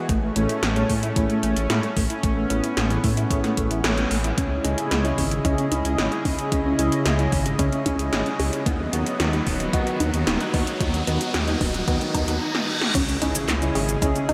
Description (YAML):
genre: synthwave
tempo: 112 BPM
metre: 4/4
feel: straight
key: C# minor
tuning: A4 = 440 Hz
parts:
  - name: chorused pulse-width pad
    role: sustained chords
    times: 0.0-14.3 s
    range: C#3 to D#5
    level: -30 LUFS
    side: equal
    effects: sidechain pumping, shimmer reverb
  - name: mellow electric guitar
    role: riff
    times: 0.1-14.3 s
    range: A3 to C#5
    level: -32 LUFS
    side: equal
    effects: analog chorus, low-pass filter, diffuse ambient delay, shimmer reverb
  - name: dark detuned saw bass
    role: bass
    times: 0.1-14.3 s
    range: D#1 to A2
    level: -29 LUFS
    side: equal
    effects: sidechain pumping
  - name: 80s electronic pad drums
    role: drums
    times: 0.1-14.3 s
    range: cabasa, crash cymbal, handclaps, hi-hat, snare drum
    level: -30 LUFS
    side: equal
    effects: none
  - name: electronic kick drum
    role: drums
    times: 0.1-14.1 s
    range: none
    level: -28 LUFS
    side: equal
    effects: overdrive
  - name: tine electric piano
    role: stabs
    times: 0.4-14.3 s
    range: A2 to D#5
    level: -32 LUFS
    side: equal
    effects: diffuse ambient delay, shimmer reverb
  - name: unison pluck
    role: arpeggios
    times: 4.4-14.3 s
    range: B3 to B4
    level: -34 LUFS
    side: equal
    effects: none
  - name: riser, reverse cymbal and impact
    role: sound effects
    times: 8.0-14.3 s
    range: none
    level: -34 LUFS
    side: equal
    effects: none
room: wet cathedral reverb, RT60 5.4 s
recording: dreamy mix soaked in reverb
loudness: -23 LUFS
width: mono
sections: 0.0-4.4 A section; 4.4-12.9 B section; 12.9-14.3 C section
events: band accent 3.8; riser 8.0-12.9; reverse cymbal 11.9-12.9; drum fill 12.5-12.9; impact 12.9-14.3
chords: 0.1 Amaj7; 4.4 C#madd9; 8.7 B/D#; 12.9 C#madd9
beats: | 0.09 0.63 1.16 1.70 | 2.23 2.77 3.31 3.84 | 4.38 4.91 5.45 5.99 | 6.52 7.06 7.59 8.13 | 8.66 9.20 9.73 10.27 | 10.81 11.34 11.88 12.41 | 12.95 13.48 14.02